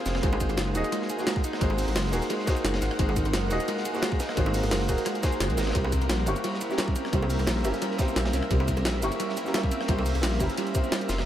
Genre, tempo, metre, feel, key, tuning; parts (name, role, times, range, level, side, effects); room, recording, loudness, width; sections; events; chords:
liquid drum and bass; 174 BPM; 4/4; swing 54% on 16ths; A4 = 440 Hz
clear baby grand piano; accompaniment; 0.0-11.1 s; Bb3 to Db6; -30 LUFS; equal; analog delay
shimmering ambient pad; sustained chords; 0.0-11.3 s; Ab4 to Gb5; -35 LUFS; equal; chorus, built-in reverb
mellow electric guitar; arpeggios; 0.0-11.2 s; G3 to Ab4; -34 LUFS; right 2 dB; ensemble chorus, tape echo
dark detuned saw bass; bass; 0.1-11.2 s; Eb1 to C2; -28 LUFS; equal
crunchy breakbeat drum kit; drums; 0.1-11.3 s; hi-hat, ride cymbal, snare drum; -36 LUFS; equal; high-pass filter on cymbals, high-pass filter on hats, high-pass filter on snare, high-pass filter on room, analog delay
jungle sampler-style drum kit; drums; 0.1-11.2 s; cabasa, hi-hat, rim click, snare drum; -32 LUFS; equal; analog delay
electronic kick drum; drums; 0.2-10.8 s; -27 LUFS; equal
bongos; percussion; 0.3-10.2 s; -40 LUFS; right 2 dB
light reverb, small room ambience; echo-heavy mix; -24 LUFS; side -11 dB against mid
0.0-11.3 A section
0.2 Ab7; 5.7 C7b9